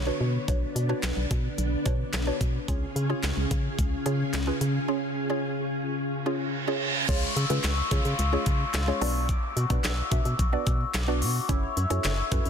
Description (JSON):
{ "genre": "dance-pop", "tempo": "109 BPM", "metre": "4/4", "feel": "straight", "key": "unclear", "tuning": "A4 = 439 Hz", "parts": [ { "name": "ensemble organ-string", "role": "sustained chords", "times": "0.0-7.0 s", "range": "C#3 to C#5", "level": "-31 LUFS", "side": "left 1 dB", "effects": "ensemble chorus, sidechain pumping" }, { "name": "organ-like FM bass", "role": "bass", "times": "0.0-12.5 s", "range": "F#1 to C#3", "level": "-28 LUFS", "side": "equal", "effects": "sidechain pumping" }, { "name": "mallet-like synth pluck", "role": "accompaniment", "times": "0.1-12.5 s", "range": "G#3 to E5", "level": "-32 LUFS", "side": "right 2 dB", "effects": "chorus, phaser, sidechain pumping" }, { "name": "pop drum kit", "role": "drums", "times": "0.5-12.5 s", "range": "crash cymbal, handclaps, hi-hat, kick drum, snare drum", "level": "-29 LUFS", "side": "equal", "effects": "none" }, { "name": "reverse cymbal and downlifter", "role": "sound effects", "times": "6.3-11.5 s", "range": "none", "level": "-33 LUFS", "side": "right 3 dB", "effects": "none" }, { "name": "cimbalom", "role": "arpeggios", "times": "7.1-12.5 s", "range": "E4 to E6", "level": "-32 LUFS", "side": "left 5 dB", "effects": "sidechain pumping, tape echo" } ], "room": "light reverb, digital ambience", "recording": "dense, heavily limited modern master", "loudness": "-24 LUFS", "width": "side -7 dB against mid", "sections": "0.0-7.1 A section; 7.1-12.5 B section", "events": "reverse cymbal 6.3-7.1", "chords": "0.0 Bmadd9; 2.7 C#; 9.0 Bm; 11.5 F#m7" }